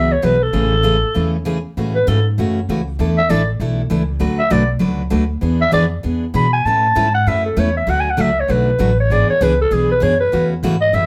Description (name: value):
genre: country, western swing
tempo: 196 BPM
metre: 4/4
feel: swing 62% on 8ths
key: A major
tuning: A4 = 441 Hz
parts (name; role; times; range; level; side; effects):
- growling clarinet; melody; 0.0-11.1 s; G#4 to B5; -19 LUFS; equal; none
- picked steel-string acoustic guitar; accompaniment; 0.0-11.1 s; C#3 to B4; -22 LUFS; equal; none
- upright bass; bass; 0.0-11.1 s; G#1 to B2; -22 LUFS; equal; none
room: moderate club reverb, RT60 0.7 s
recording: none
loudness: -16 LUFS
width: mono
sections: 0.0-1.8 A section; 1.8-11.1 B section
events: clarinet solo 1.8-11.1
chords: 0.0 Eadd9; 0.5 Amaj7; 1.8 A6; 3.0 E7sus4; 4.2 Bm7; 5.4 E7; 6.7 Aadd9; 7.9 D; 9.1 E7; 10.3 A6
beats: 0.24 | 0.55 0.85 1.16 1.46 | 1.77 2.08 2.38 2.69 | 2.99 3.30 3.60 3.91 | 4.21 4.52 4.82 5.13 | 5.43 5.74 6.04 6.35 | 6.66 6.96 7.27 7.57 | 7.88 8.19 8.49 8.80 | 9.11 9.41 9.72 10.02 | 10.33 10.63 10.94